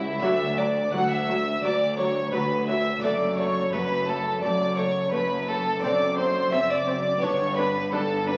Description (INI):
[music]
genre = classical, baroque-style concerto movement with solo episodes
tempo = 86 BPM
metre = 4/4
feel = straight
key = D major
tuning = A4 = 439 Hz
[part]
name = rich chamber violin section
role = melody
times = 0.0-8.4 s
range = E5 to F#6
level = -34 LUFS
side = equal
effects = none
[part]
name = rich violin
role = melody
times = 0.0-8.4 s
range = E4 to F#5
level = -29 LUFS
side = equal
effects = none
[part]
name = rich chamber violin section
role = second line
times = 0.0-8.4 s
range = E4 to F#5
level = -33 LUFS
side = equal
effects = none
[part]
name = harpsichord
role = accompaniment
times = 0.0-8.4 s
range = C#2 to A4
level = -36 LUFS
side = equal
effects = none
[part]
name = rich chamber cello section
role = bass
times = 0.0-8.4 s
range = C#2 to G2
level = -34 LUFS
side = equal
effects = none
[part]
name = rich symphonic double bass section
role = bass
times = 0.0-8.4 s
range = F#1 to D2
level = -37 LUFS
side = equal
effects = none
[part]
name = warm symphonic viola section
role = accompaniment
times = 0.2-8.3 s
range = F#3 to D4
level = -34 LUFS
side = equal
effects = none
[sound]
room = wet recital hall reverb, RT60 1.4 s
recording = very old 78 rpm record, vinyl crackle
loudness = -25 LUFS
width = mono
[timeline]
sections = 0.0-8.4 A section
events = none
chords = 0.2 D; 3.0 D/F#; 5.8 D7/F#; 7.2 G